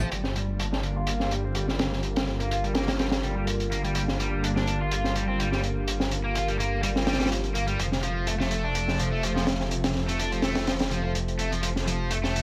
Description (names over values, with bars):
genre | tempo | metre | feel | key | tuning
breakbeat, breaks | 125 BPM | 4/4 | swing 54% on 16ths | G minor | A4 = 439 Hz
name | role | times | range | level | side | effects
lush unison pad | sustained chords | 0.0-12.4 s | C3 to F4 | -34 LUFS | equal | chorus, phaser
cranked stack guitar | riff | 0.0-12.4 s | F3 to F4 | -34 LUFS | equal | overdrive, low-pass filter, digital delay
dark detuned saw bass | bass | 0.0-12.4 s | F1 to G1 | -32 LUFS | equal | none
crunchy breakbeat drum kit | drums | 0.1-12.4 s | hi-hat, snare drum | -31 LUFS | equal | low-pass filter on kick, low-pass filter on hats, low-pass filter on snare, low-pass filter on room
room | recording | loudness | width
light reverb, small room reverb | vinyl crackle | -27 LUFS | mono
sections
0.1-12.4 A section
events
filter sweep on overdriven electric guitar 0.1-12.4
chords
0.1 Gm7; 7.8 F